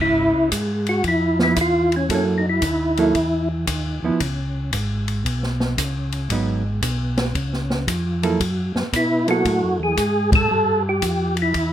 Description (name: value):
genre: soul jazz organ trio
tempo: 114 BPM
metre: 4/4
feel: swing 66% on 8ths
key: unclear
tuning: A4 = 437 Hz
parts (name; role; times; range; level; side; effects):
- percussive tonewheel organ; melody; 0.0-3.5, 9.0-11.7 s; Db4 to A4; -19 LUFS; equal; slow rotary speaker, chorus vibrato
- tonewheel organ; bass; 0.0-11.7 s; Ab1 to Cb3; -23 LUFS; equal; chorus vibrato, slow rotary speaker
- open jazz drum kit; drums; 0.5-11.7 s; hi-hat, kick drum, ride cymbal, snare drum; -26 LUFS; left 1 dB; none
- hollow-body jazz guitar; accompaniment; 1.4-9.9 s; F3 to A4; -22 LUFS; right 4 dB; none
room: moderate small room reverb, RT60 0.5 s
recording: none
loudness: -18 LUFS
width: side -11 dB against mid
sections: 0.0-11.7 A section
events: band accent 10.2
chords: 0.0 Db(#9); 2.1 Gb7#9; 4.2 Db5; 6.3 Abm7; 7.4 Db; 8.4 Gb7#9; 10.5 G5